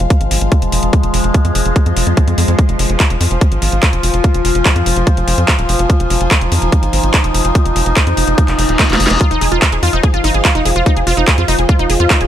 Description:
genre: psychedelic trance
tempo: 145 BPM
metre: 4/4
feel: straight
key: F minor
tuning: A4 = 440 Hz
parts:
  - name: overtone-sweeping drone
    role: sustained chords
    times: 0.0-12.3 s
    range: F3 to F4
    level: -18 LUFS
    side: left 1 dB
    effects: chorus, built-in reverb, sidechain pumping
  - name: tight sequencer bass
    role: bass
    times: 0.0-12.3 s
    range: Eb1 to F2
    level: -16 LUFS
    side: equal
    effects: none
  - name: drum and bass drum kit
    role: drums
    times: 0.0-12.3 s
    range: handclaps, hi-hat, snare drum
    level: -18 LUFS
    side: equal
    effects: overdrive
  - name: warm symphonic string section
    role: texture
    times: 0.0-12.3 s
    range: F4 to Ab5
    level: -27 LUFS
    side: left 2 dB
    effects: sidechain pumping
  - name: electronic kick drum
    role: drums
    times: 0.1-12.2 s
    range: none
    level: -12 LUFS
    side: equal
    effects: overdrive
  - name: reverse cymbal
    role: sound effects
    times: 8.5-9.2 s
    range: none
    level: -22 LUFS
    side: left 2 dB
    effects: none
  - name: wide unison pluck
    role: riff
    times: 9.2-12.2 s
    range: Eb4 to Ab4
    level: -17 LUFS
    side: right 1 dB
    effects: auto-pan, sidechain pumping, tape echo
room: little or no reverb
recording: none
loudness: -11 LUFS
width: side -11 dB against mid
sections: 0.0-12.3 A section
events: fade-in on string section 0.0-12.3; reverse cymbal 8.5-9.2; drum fill 8.8-9.2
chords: 0.0 F5

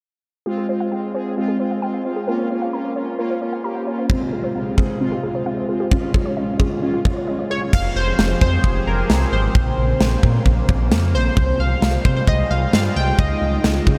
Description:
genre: synth-pop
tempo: 132 BPM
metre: 4/4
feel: straight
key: F minor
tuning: A4 = 440 Hz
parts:
  - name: mellow synth brass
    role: accompaniment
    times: 0.5-7.7 s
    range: C3 to Ab4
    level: -26 LUFS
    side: equal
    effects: chorus
  - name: warbly dusty pluck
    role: arpeggios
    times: 0.5-7.7 s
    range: C4 to Bb5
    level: -30 LUFS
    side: equal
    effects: chorus, diffuse ambient delay
  - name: huge arena drum kit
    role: drums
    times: 4.1-14.0 s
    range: crash cymbal, kick drum, snare drum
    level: -22 LUFS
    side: equal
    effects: none
  - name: funky polysynth comp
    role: melody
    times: 7.5-13.8 s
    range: Bb4 to G5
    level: -26 LUFS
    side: equal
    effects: chorus, diffuse ambient delay
  - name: sweeping resonant pad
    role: sustained chords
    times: 7.7-14.0 s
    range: Db3 to Ab4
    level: -28 LUFS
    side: equal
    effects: chorus, phaser
  - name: smooth gliding synth bass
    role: bass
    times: 7.7-14.0 s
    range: F1 to Db3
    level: -22 LUFS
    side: equal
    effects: none
room: moderate huge ambient reverb, RT60 7.4 s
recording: dreamy mix soaked in reverb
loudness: -19 LUFS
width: mono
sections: 0.5-7.7 A section; 7.7-14.0 B section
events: none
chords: 0.5 Fmadd9; 2.3 Bbmadd9; 4.1 Fmadd9/C; 5.9 Db; 7.7 Fmadd9; 9.6 Bbmadd9; 11.4 Fmadd9/C; 13.2 Dbadd9

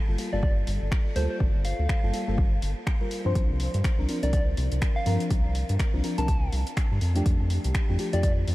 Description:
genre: deep house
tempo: 123 BPM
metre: 4/4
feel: swing 58% on 16ths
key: unclear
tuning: A4 = 439 Hz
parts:
  - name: mellow FM electric piano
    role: stabs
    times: 0.0-8.5 s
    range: F3 to C5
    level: -32 LUFS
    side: left 1 dB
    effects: chorus, phaser, vintage 12-bit sampler grit, sidechain pumping, tape echo
  - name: round analog bass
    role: bass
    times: 0.1-8.5 s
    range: G1 to G2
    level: -26 LUFS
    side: equal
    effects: sidechain pumping
  - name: deep house drum kit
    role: drums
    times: 0.2-8.5 s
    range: finger snaps, hi-hat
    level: -37 LUFS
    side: equal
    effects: overdrive
  - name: soft struck synth lead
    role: melody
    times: 0.3-8.3 s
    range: C5 to A5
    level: -35 LUFS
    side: equal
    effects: chorus, cassette tape, tape echo
  - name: electronic kick drum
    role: drums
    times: 0.4-8.3 s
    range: none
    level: -25 LUFS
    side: equal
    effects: overdrive
room: light reverb, digital ambience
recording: vinyl crackle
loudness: -23 LUFS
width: side -18 dB against mid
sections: 0.0-8.5 A section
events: none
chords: 0.0 Gm9; 3.4 C9sus4; 7.0 F69

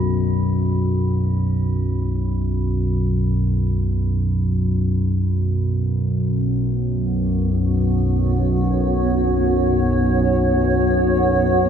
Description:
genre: dark ambient drone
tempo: free time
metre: none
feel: none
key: unclear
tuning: A4 = 436 Hz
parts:
  - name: analog drone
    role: drone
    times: 0.0-11.7 s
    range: B1 to F#2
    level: -18 LUFS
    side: equal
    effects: chorus
  - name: bronze singing bowl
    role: texture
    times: 0.0-11.7 s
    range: F#4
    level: -35 LUFS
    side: equal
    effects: none
  - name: granular cloud pad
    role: sustained chords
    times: 7.1-11.7 s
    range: B3 to C#5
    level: -20 LUFS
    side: right 1 dB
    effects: built-in reverb
room: wet cathedral reverb, RT60 7.1 s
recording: in a vast, echoing space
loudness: -17 LUFS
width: side -8 dB against mid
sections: 0.0-11.7 A section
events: none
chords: 0.0 Bsus2

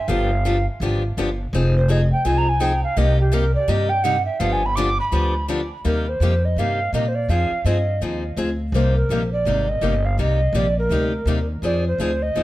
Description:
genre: acoustic string swing (jazz manouche)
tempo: 166 BPM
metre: 4/4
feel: swing 61% on 8ths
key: C minor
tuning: A4 = 438 Hz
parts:
  - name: mellow hollow alto recorder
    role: melody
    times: 0.0-12.4 s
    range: G4 to D6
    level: -23 LUFS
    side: right 2 dB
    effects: tape echo
  - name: picked steel-string acoustic guitar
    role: accompaniment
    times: 0.1-12.4 s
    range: C3 to Ab4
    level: -25 LUFS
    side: left 3 dB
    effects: none
  - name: upright bass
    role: bass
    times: 0.1-12.4 s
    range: F1 to Bb2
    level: -21 LUFS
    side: equal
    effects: none
room: moderate studio reverb, RT60 0.8 s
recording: none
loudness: -18 LUFS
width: side -16 dB against mid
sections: 0.0-5.8 A section; 5.8-12.4 B section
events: recorder solo 0.0-5.8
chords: 0.1 G7; 1.5 Fm7; 3.0 Cm7; 4.4 G7; 5.8 Cm7; 7.3 Fm9; 8.7 Cm9; 11.6 Fm7

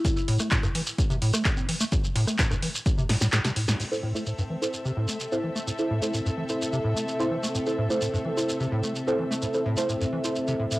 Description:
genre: acid house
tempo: 128 BPM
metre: 4/4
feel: straight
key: A minor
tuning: A4 = 440 Hz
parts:
  - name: acid bass, square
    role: riff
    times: 0.0-10.8 s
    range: G2 to C4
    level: -28 LUFS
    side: equal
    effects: tube saturation, lush chorus, sidechain pumping, cassette tape, analog delay
  - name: breakbeat sampler-style drum kit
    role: drums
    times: 0.0-3.7 s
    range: hi-hat, snare drum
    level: -37 LUFS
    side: equal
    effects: none
  - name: electronic kick drum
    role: drums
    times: 0.0-3.0 s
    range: none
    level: -26 LUFS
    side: equal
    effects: none
  - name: shekere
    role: percussion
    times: 0.1-10.8 s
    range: none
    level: -33 LUFS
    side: right 1 dB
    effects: none
  - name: electro analog drum machine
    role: drums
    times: 0.3-3.9 s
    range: crash cymbal, handclaps, hi-hat, rim click, snare drum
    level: -29 LUFS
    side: equal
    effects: none
  - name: dark analog pad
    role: sustained chords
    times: 3.8-10.8 s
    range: C4 to E5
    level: -32 LUFS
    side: equal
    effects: lush chorus, sidechain pumping, cassette tape
  - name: muted studio string section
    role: texture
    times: 3.8-10.8 s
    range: C4 to E5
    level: -35 LUFS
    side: left 1 dB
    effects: sidechain pumping, cassette tape
  - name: deep mellow chord stab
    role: stabs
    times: 3.9-10.8 s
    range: E4 to C5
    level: -29 LUFS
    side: right 1 dB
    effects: chorus, cassette tape, analog delay
room: moderate spring reverb, RT60 1.2 s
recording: home recording on cassette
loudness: -24 LUFS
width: side -19 dB against mid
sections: 0.0-3.8 A section; 3.8-10.8 B section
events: filter sweep on acid bass 0.0-3.8; drum fill 3.1-3.8; kick drops out 3.3-3.8; band accent 3.7; filter sweep on synth stab 3.8-10.8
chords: 0.0 N.C.; 3.8 Am

